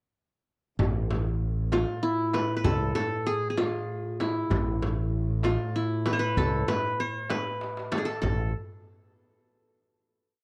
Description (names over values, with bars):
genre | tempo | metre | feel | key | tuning
Arabic maqam ensemble | 64 BPM (dotted quarters) | 6/8 | straight | A maqam suznak | A4 = 440 Hz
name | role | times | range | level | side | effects
fretless electric bass | bass | 0.8-8.5 s | A1 to C2+50c | -30 LUFS | equal | none
dark double bass | drone | 0.8-8.3 s | A2 | -38 LUFS | equal | none
darbuka | percussion | 0.8-8.5 s | none | -37 LUFS | equal | none
frame drum | percussion | 0.8-8.5 s | none | -37 LUFS | equal | none
qanun | melody | 1.7-8.5 s | E4 to C5+50c | -31 LUFS | equal | none
room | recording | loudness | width
small room ambience | dry, close 1970s-style studio recording | -28 LUFS | mono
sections
0.8-8.2 A section; 8.2-10.1 final note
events
drum fill 7.6-8.2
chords
none